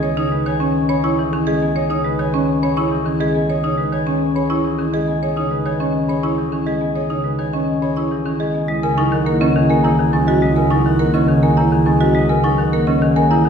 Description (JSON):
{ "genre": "classical, minimalist pattern music", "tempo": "104 BPM", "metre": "3/4", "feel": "straight", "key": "C# dorian", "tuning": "A4 = 440 Hz", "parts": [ { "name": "concert harp", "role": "melody", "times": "0.0-13.5 s", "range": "G#4 to G#5", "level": "-24 LUFS", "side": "left 6 dB", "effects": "none" }, { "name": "marimba with hard mallets", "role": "accompaniment", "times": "0.0-13.5 s", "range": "C#3 to C#4", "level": "-20 LUFS", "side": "equal", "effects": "none" }, { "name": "buzzing marimba with medium hard mallets", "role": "arpeggios", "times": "0.0-13.5 s", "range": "C#4 to C#5", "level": "-21 LUFS", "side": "right 2 dB", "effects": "none" }, { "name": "rich double bass", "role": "bass", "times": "0.0-13.5 s", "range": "C#2", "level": "-24 LUFS", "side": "right 2 dB", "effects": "none" }, { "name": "celesta", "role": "arpeggios", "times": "0.2-13.5 s", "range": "D#5 to D#6", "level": "-24 LUFS", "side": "left 3 dB", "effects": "none" }, { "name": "mellow hollow wooden-headed alto flute", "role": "second line", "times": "8.7-11.9 s", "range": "E4", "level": "-25 LUFS", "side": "right 3 dB", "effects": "none" } ], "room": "wet recital hall reverb, RT60 1.3 s", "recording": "recorded in a church or concert hall", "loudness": "-15 LUFS", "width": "side -7 dB against mid", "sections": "0.0-8.7 A section; 8.7-13.5 B section", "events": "none", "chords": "0.0 C#m7; 8.7 C#m69" }